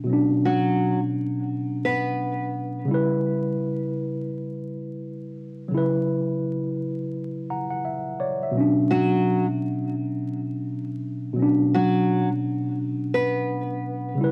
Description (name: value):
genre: hip hop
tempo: 85 BPM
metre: 4/4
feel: swing 63% on 16ths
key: B minor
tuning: A4 = 438 Hz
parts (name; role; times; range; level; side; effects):
- mellow tine electric piano; accompaniment; 0.0-14.3 s; B2 to A#5; -26 LUFS; equal; cassette tape, high-pass filter, low-pass filter
- nylon-string guitar; melody; 0.5-2.9, 8.9-14.2 s; F#3 to B4; -27 LUFS; equal; high-pass filter, low-pass filter, cassette tape
room: moderate small room reverb, RT60 0.5 s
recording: home recording on cassette, vinyl crackle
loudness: -25 LUFS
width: mono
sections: 0.0-14.3 A section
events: none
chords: 0.0 Bmadd9; 2.9 C#m7b5; 5.7 F#7sus4; 8.6 Bmadd9